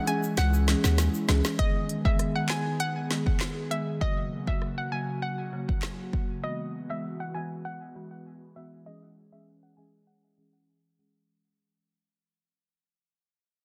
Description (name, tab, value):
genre	dancehall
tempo	99 BPM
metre	4/4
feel	straight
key	unclear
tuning	A4 = 440 Hz
part	hollow square pluck	melody	0.0-10.5 s	D#5 to G#5	-37 LUFS	equal	chorus, low-pass filter, delay
part	airy breathy pad	sustained chords	0.0-11.3 s	C#3 to G#4	-41 LUFS	equal	chorus, phaser, sidechain pumping, low-pass filter
part	marimba with medium mallets	accompaniment	0.1-11.3 s	C#3 to G#4	-35 LUFS	equal	sidechain pumping, low-pass filter
part	afro-pop drum kit	drums	0.1-6.3 s	handclaps, hi-hat, kick drum, rim click, snare drum	-31 LUFS	equal	soft clipping on snare
part	egg shaker and timbales	percussion	0.1-1.6 s	none	-43 LUFS	equal	none
part	hard-hitting 808-style bass	bass	0.4-1.4 s	C#2 to D#2	-26 LUFS	equal	none
room	light reverb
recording	dense, heavily limited modern master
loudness	-28 LUFS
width	mono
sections	0.0-1.6 A section; 1.6-11.3 B section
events	drum fill 0.4-1.6; fade-out 1.6-11.3; filter sweep 1.6-11.3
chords	0.0 C#m; 1.6 G#m; 4.0 F#; 6.4 Eadd9; 8.9 C#m